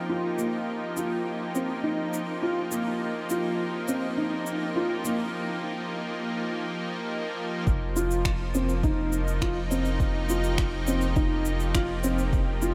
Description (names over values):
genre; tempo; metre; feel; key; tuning
piano and strings electronica; 103 BPM; 4/4; straight; unclear; A4 = 440 Hz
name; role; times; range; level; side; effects
lush unison pad; sustained chords; 0.0-12.7 s; F3 to G4; -34 LUFS; equal; chorus, sidechain pumping, shimmer reverb
felt-muted upright piano; riff; 0.1-12.7 s; Bb3 to F4; -32 LUFS; equal; tape echo, shimmer reverb
electronic shaker and finger snaps; drums; 0.4-12.7 s; none; -39 LUFS; equal; none
round analog bass; bass; 7.7-12.7 s; F1; -31 LUFS; equal; sidechain pumping
electronic kick drum; drums; 7.7-12.4 s; none; -29 LUFS; equal; none
room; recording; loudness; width
wet huge ambient reverb, RT60 7.8 s; dreamy mix soaked in reverb; -28 LUFS; mono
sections
0.0-7.7 A section; 7.7-12.7 B section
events
build-up 0.0-7.7; break 5.3-7.7; drop 7.7-12.7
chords
0.0 F5